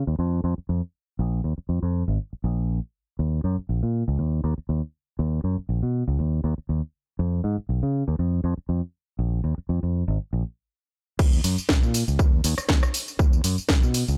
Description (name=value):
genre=filtered disco house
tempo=120 BPM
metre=4/4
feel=swing 55% on 16ths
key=Eb minor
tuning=A4 = 440 Hz
part: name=fingered electric bass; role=bass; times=0.0-14.2 s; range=Ab1 to Db3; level=-26 LUFS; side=equal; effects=sidechain pumping, low-pass filter
part: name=electronic kick drum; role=drums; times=11.2-13.8 s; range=none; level=-22 LUFS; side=equal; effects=overdrive
part: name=house drum kit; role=drums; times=11.2-14.2 s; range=crash cymbal, hi-hat, rim click, snare drum, tambourine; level=-28 LUFS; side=equal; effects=overdrive, sidechain pumping on cymbals, sidechain pumping on perc, sidechain pumping on hats
room=little or no reverb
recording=dry, gritty hardware recording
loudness=-25 LUFS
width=mono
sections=0.0-11.2 A section; 11.2-14.2 B section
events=filter sweep on fingered electric bass 0.0-11.2; drop 11.2-14.2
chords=none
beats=0.19 0.69 | 1.19 1.69 2.19 2.69 | 3.19 3.69 4.19 4.69 | 5.19 5.69 6.19 6.69 | 7.19 7.69 8.19 8.69 | 9.19 9.69 10.19 10.69 | 11.19 11.69 12.19 12.69 | 13.19 13.69